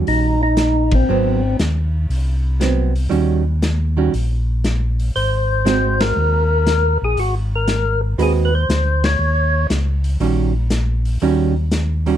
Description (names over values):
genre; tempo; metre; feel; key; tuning
soul jazz organ trio; 118 BPM; 4/4; swing 68% on 8ths; unclear; A4 = 438 Hz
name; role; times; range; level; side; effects
archtop guitar, miked and amplified; accompaniment; 0.0-12.2 s; Eb3 to B4; -20 LUFS; right 7 dB; none
mellow tonewheel organ; bass; 0.0-12.2 s; Ab1 to Eb2; -18 LUFS; equal; overdrive, chorus vibrato, slow rotary speaker
percussive tonewheel organ; melody; 0.1-1.6, 5.2-9.7 s; C4 to Db5; -19 LUFS; left 2 dB; slow rotary speaker, overdrive
vintage drum kit; drums; 0.1-12.1 s; hi-hat, kick drum, ride cymbal, snare drum; -24 LUFS; left 1 dB; none
room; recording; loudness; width
light reverb; dark, warm production; -15 LUFS; side -10 dB against mid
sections
0.0-12.2 A section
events
band accent 0.8, 5.9, 8.9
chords
0.0 Eb7#9; 1.1 Ab7#9; 3.1 Eb7#9; 5.2 Ab7; 9.2 Eb7#9